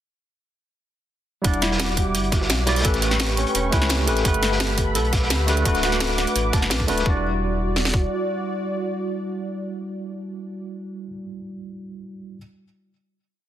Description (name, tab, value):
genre	liquid drum and bass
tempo	171 BPM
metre	4/4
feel	straight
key	E dorian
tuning	A4 = 435 Hz
part	tine electric piano	accompaniment	1.4-12.4 s	G3 to F#5	-26 LUFS	equal	medium stereo tremolo, digital delay
part	warm analog pad	sustained chords	1.4-10.6 s	G3 to D6	-29 LUFS	equal	chorus, sidechain pumping
part	felt-muted upright piano	arpeggios	1.4-7.2 s	C#4 to A5	-31 LUFS	right 2 dB	digital delay
part	sub bass with octave	bass	1.4-8.1 s	D1 to D2	-25 LUFS	equal	tube saturation
part	crunchy breakbeat drum kit	drums	1.4-7.1 s	hi-hat, snare drum	-29 LUFS	equal	high-pass filter on hats, high-pass filter on snare, high-pass filter on room
part	drum and bass drum kit	drums	1.4-8.0 s	kick drum, snare drum	-22 LUFS	equal	overdrive
part	drum and bass drum kit	drums	1.4-7.0 s	hi-hat, snare drum	-24 LUFS	right 1 dB	overdrive
room	light reverb, small room ambience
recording	dense, heavily limited modern master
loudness	-19 LUFS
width	side -11 dB against mid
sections	1.4-7.1 drop; 7.1-9.9 final chord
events	drop 1.4-7.1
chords	1.4 Em9; 2.8 A9; 4.3 Gmaj9; 5.7 D6; 7.1 Em9